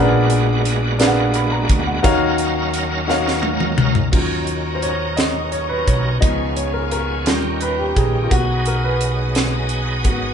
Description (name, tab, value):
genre	slow gospel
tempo	57 BPM (dotted quarters)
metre	6/8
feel	straight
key	Eb minor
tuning	A4 = 441 Hz
part	warm grand piano	accompaniment	0.0-10.3 s	Bb2 to Cb6	-20 LUFS	left 1 dB	none
part	bright tonewheel organ	sustained chords	0.0-10.3 s	Eb3 to F5	-24 LUFS	right 3 dB	slow rotary speaker, chorus vibrato
part	fingered electric bass	bass	0.0-10.3 s	Ab1 to Eb2	-22 LUFS	equal	none
part	crisp fusion drum kit	drums	0.3-10.2 s	crash cymbal, hi-hat, kick drum, snare drum, toms	-20 LUFS	equal	none
part	warm studio string section	sustained chords	4.1-10.3 s	Db5 to Eb6	-30 LUFS	left 1 dB	none
room	moderate small room reverb, RT60 0.5 s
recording	band playing live in one room, nothing above 11.0 kHz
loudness	-16 LUFS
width	side -7 dB against mid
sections	0.0-4.1 A section; 4.1-10.3 B section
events	drum fill 3.1-4.1; grand piano solo 4.1-10.3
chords	0.0 Bb7b9b13; 2.0 Ebm9; 4.1 Ebm7; 6.2 Db7; 7.3 Eb7; 8.3 Abm7/Cb